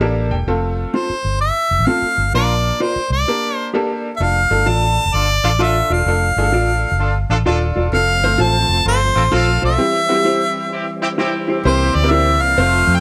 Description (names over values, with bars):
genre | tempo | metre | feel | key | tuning
soul | 129 BPM | 4/4 | swing 65% on 8ths | unclear | A4 = 445 Hz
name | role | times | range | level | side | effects
bright upright piano | accompaniment | 0.0-13.0 s | G3 to A5 | -24 LUFS | equal | none
mellow electric guitar | stabs | 0.0-12.3 s | C4 to D5 | -25 LUFS | equal | spring reverb
vintage muted fingered electric bass | bass | 0.0-13.0 s | Eb1 to F2 | -20 LUFS | equal | tube saturation
clear harmonica | melody | 0.9-13.0 s | C5 to A5 | -19 LUFS | equal | none
clear horn section | second line | 2.3-13.0 s | A3 to Bb4 | -25 LUFS | equal | none
overdriven tonewheel organ | sustained chords | 7.9-13.0 s | E3 to F4 | -29 LUFS | equal | fast rotary speaker, chorus vibrato
room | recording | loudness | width
light reverb, small room ambience | none | -17 LUFS | mono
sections
0.0-4.2 A section; 4.2-11.6 B section; 11.6-13.0 C section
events
upright piano fill 0.0-0.5; band accent 2.3-4.2; break 3.3-4.2, 9.8-11.6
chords
0.5 F; 2.3 Bb; 3.3 Gm; 4.2 Dm; 7.9 F; 9.8 C; 11.6 C7